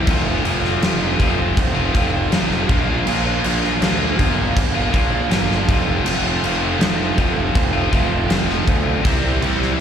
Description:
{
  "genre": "quiet-loud alternative rock",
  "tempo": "80 BPM",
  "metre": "4/4",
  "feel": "straight",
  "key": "unclear",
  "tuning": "A4 = 441 Hz",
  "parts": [
    { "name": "raw garage guitar", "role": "riff", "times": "0.0-9.8 s", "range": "F2 to F4", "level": "-24 LUFS", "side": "right 11 dB", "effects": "overdrive" },
    { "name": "scooped high-gain guitar", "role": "riff", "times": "0.0-9.8 s", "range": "F2 to F4", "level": "-25 LUFS", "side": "left 16 dB", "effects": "distortion, slapback echo" },
    { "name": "tight distorted guitar", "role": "riff", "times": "0.0-9.8 s", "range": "F2 to C4", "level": "-24 LUFS", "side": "left 2 dB", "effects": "distortion, slapback echo" },
    { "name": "fuzz picked electric bass", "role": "bass", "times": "0.1-9.7 s", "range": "F1 to D2", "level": "-22 LUFS", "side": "equal", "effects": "overdrive" },
    { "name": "huge arena drum kit", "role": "drums", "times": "0.1-9.7 s", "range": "crash cymbal, kick drum, snare drum", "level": "-20 LUFS", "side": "equal", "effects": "none" }
  ],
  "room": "little or no reverb",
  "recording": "live gig heard through the venue's PA, recital hall reverb",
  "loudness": "-16 LUFS",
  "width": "side -8 dB against mid",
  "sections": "0.0-9.8 A section",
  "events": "none",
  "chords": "0.1 F; 2.7 Bb; 5.7 F; 9.0 C"
}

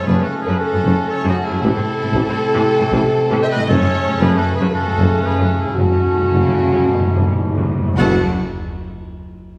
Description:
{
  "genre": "cinematic, heroic adventure film score",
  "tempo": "107-117 BPM",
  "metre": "4/4",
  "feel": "straight",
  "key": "F# minor",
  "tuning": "A4 = 435 Hz",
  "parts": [
    { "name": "rich symphonic violin section", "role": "melody", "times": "0.0-8.3 s", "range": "F#4 to F#5", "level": "-32 LUFS", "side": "equal", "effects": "none" },
    { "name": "bright clarinet", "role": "second line", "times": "0.0-8.2 s", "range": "C4 to A4", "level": "-30 LUFS", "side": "equal", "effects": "none" },
    { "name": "mellow hollow large flute ensemble", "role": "second line", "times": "0.0-8.3 s", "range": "A5", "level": "-32 LUFS", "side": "equal", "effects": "none" },
    { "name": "warm oboe", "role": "second line", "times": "0.0-8.2 s", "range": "C#4 to F#5", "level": "-30 LUFS", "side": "equal", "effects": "none" },
    { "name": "warm symphonic violin section", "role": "second line", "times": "0.0-8.3 s", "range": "F#4 to F#5", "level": "-32 LUFS", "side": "equal", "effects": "none" },
    { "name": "clear trombone section", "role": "sustained chords", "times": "0.0-8.2 s", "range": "C3 to A3", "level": "-28 LUFS", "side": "equal", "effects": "none" },
    { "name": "mellow French horn section", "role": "sustained chords", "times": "0.0-8.2 s", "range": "F#4 to E5", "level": "-24 LUFS", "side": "equal", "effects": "none" },
    { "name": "timpani", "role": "percussion", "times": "0.0-0.3, 3.7-8.2 s", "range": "F#2", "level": "-23 LUFS", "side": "equal", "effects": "none" },
    { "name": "rich symphonic viola section", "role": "accompaniment", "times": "0.1-8.3 s", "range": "C3 to F#4", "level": "-29 LUFS", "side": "equal", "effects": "none" },
    { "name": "mellow tuba", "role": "bass", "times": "0.1-8.2 s", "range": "F#1 to A1", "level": "-25 LUFS", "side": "equal", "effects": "none" },
    { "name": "rich symphonic double bass section", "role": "bass", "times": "0.1-8.3 s", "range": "F#1 to A1", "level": "-25 LUFS", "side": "equal", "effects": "none" },
    { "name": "warm studio cello section", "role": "bass", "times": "0.1-8.3 s", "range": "F#2 to C#3", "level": "-25 LUFS", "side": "equal", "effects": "none" },
    { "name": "clash cymbals and concert bass drum", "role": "percussion", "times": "8.0-9.0 s", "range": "none", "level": "-32 LUFS", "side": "equal", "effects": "none" }
  ],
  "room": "moderate scoring stage reverb, RT60 1.7 s",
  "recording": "studio reverb",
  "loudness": "-17 LUFS",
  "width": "mono",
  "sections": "0.0-8.0 A section; 8.0-9.6 B section",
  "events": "slowing down 2.7-8.0; timpani fill 3.7-8.0; band accent 8.0-8.5",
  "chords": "0.0 F#m; 1.6 Am; 3.7 F#m"
}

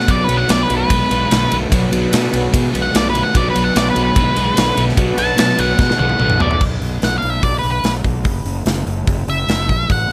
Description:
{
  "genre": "blues rock power trio and southern rock",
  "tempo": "147 BPM",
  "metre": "4/4",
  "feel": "straight",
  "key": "B minor",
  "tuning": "A4 = 437 Hz",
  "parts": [
    { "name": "octave-fuzz lead guitar", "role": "melody", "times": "0.0-10.1 s", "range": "B4 to A5", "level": "-21 LUFS", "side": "equal", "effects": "distortion" },
    { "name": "overdriven tonewheel organ", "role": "sustained chords", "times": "0.0-6.6 s", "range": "B3 to B4", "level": "-29 LUFS", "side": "equal", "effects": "chorus vibrato, slow rotary speaker" },
    { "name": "crunchy overdriven guitar", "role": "riff", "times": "0.0-6.6 s", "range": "B2 to A3", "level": "-21 LUFS", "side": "equal", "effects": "none" },
    { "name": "big rock drum kit", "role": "drums", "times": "0.0-10.0 s", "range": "crash cymbal, hi-hat, kick drum, ride cymbal, snare drum, toms", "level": "-21 LUFS", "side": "equal", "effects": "none" },
    { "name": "fuzz fingered electric bass", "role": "bass", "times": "0.1-10.1 s", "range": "F#1 to B2", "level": "-23 LUFS", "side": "equal", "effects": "overdrive" }
  ],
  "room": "light reverb, small room ambience",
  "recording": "none",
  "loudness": "-16 LUFS",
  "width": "mono",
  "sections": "0.0-6.6 A section; 6.6-10.1 B section",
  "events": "lead electric guitar solo 0.0-6.6; drum fill 5.8-6.6",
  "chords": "0.0 Bm; 6.6 N.C."
}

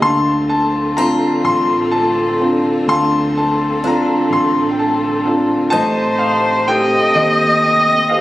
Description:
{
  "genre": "acoustic folk-pop ballad",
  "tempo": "42 BPM (dotted quarters)",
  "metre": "6/8",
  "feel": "straight",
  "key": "unclear",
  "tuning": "A4 = 439 Hz",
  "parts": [
    { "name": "clear baby grand piano", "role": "melody", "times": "0.0-8.2 s", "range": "D3 to C6", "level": "-15 LUFS", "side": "left 1 dB", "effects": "none" },
    { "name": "dark viola", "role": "second line", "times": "0.0-8.2 s", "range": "A4 to Eb5", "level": "-18 LUFS", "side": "equal", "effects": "none" },
    { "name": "clear studio string section", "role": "sustained chords", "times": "0.0-8.2 s", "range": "C3 to G4", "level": "-28 LUFS", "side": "left 1 dB", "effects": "none" },
    { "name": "vintage muted fingered electric bass", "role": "bass", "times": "0.0-8.2 s", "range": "A1 to Eb2", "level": "-26 LUFS", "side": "equal", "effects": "none" },
    { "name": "picked steel-string acoustic guitar", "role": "arpeggios", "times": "1.0-7.3 s", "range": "D4 to F4", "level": "-21 LUFS", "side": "right 1 dB", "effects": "none" }
  ],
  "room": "wet recital hall reverb, RT60 1.8 s",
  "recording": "recorded on a phone in the room, club reverb, compression",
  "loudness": "-13 LUFS",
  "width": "side -15 dB against mid",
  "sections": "0.0-8.2 A section",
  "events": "none",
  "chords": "0.0 Dm7; 5.7 Am7b5"
}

